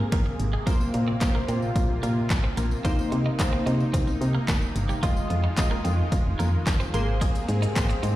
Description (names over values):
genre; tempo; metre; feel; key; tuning
dance-pop; 110 BPM; 4/4; straight; C minor; A4 = 440 Hz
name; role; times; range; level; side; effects
soft supersaw; sustained chords; 0.0-8.2 s; C3 to Ab4; -32 LUFS; equal; sidechain pumping
twelve-string electric guitar; riff; 0.0-8.1 s; G3 to F4; -35 LUFS; right 3 dB; wide subtle chorus
solid FM bass; bass; 0.0-8.2 s; F1 to C3; -25 LUFS; equal; sidechain pumping
punchy analog drum machine; drums; 0.1-8.2 s; finger snaps, handclaps, hi-hat, kick drum, shaker, snare drum; -26 LUFS; equal; overdrive
glassy digital keys; accompaniment; 0.7-8.2 s; Ab3 to Eb5; -31 LUFS; left 1 dB; chorus, sidechain pumping
tambourine; percussion; 0.7-8.2 s; none; -44 LUFS; left 8 dB; none
swell; sound effects; 7.6-8.2 s; none; -36 LUFS; left 2 dB; none
room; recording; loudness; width
light reverb; played on a big sound system in a bare room, stone room reverb; -22 LUFS; side -15 dB against mid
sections
0.0-8.2 A section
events
swell 7.6-8.2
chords
0.0 Abadd9; 0.7 Bbsus2; 2.9 Cm7; 5.0 Fm7; 6.9 Abadd9